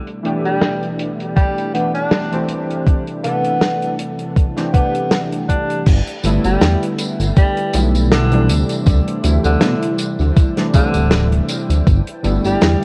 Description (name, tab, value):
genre	vaporwave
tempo	80 BPM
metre	4/4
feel	swing 55% on 16ths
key	G major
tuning	A4 = 443 Hz
part	soft string machine	sustained chords	0.0-12.8 s	B2 to A5	-34 LUFS	equal	none
part	warm soul drum kit	drums	0.1-12.8 s	crash cymbal, hi-hat, snare drum, tambourine	-23 LUFS	equal	none
part	warbly lo-fi synth keys	accompaniment	0.2-12.8 s	C3 to A4	-23 LUFS	equal	lush chorus, vintage 12-bit sampler grit, tape echo
part	warm tenor saxophone	melody	0.5-12.8 s	D3 to D4	-25 LUFS	equal	tape echo
part	electronic kick drum	drums	1.4-12.0 s	none	-15 LUFS	equal	overdrive
part	chorused synth bass	bass	5.9-12.8 s	D1 to B2	-18 LUFS	equal	none
room	light reverb, studio ambience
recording	cassette tape, low-pass filter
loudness	-17 LUFS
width	mono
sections	0.0-5.9 A section; 5.9-12.8 B section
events	none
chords	0.0 G69; 2.5 D9sus4; 5.9 G69; 8.5 D9sus4; 11.9 G69